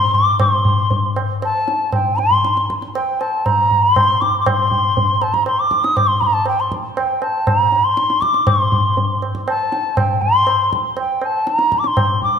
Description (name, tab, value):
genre	indian classical, Hindustani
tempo	119 BPM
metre	4/4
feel	straight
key	C raga kafi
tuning	A4 = 441 Hz
part	reedy bansuri	melody	0.0-12.4 s	G5 to Eb6	-16 LUFS	equal	none
part	tabla	percussion	0.1-12.4 s	none	-20 LUFS	equal	none
room	wet scoring stage reverb, RT60 2.0 s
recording	none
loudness	-14 LUFS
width	side -7 dB against mid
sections	0.4-12.4 A section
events	none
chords	none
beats	| 0.39 0.90 1.41 1.92 | 2.43 2.93 3.44 3.95 | 4.45 4.96 5.46 5.96 | 6.47 6.97 7.47 7.97 | 8.47 8.97 9.47 9.97 | 10.47 10.97 11.46 11.96